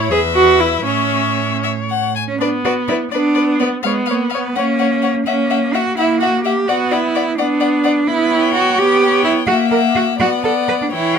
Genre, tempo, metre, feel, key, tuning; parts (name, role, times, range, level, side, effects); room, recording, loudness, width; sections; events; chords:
quick classical-period movement for string quartet; 84 BPM (dotted quarters); 6/8; rubato; B minor; A4 = 441 Hz
clear violin; melody; 0.0-11.2 s; C#5 to G#5; -22 LUFS; left 10 dB
rich violin; second line; 0.0-11.2 s; B4 to E5; -22 LUFS; left 5 dB
clear viola; accompaniment; 0.0-11.2 s; E3 to G#4; -18 LUFS; equal
clear cello; bass; 0.0-11.2 s; E2 to B4; -17 LUFS; right 4 dB
light reverb; minimal, uncompressed stereo recording; -13 LUFS; side -7 dB against mid
0.0-2.4 A section; 2.4-11.2 B section
0.1 E5; 0.9 A; 2.4 Bm; 3.8 C#7/G#; 4.6 F#/A#; 5.3 F#7/A#; 6.7 Bm; 8.1 C#m7b5/B; 9.5 F#7/A#; 10.2 Bm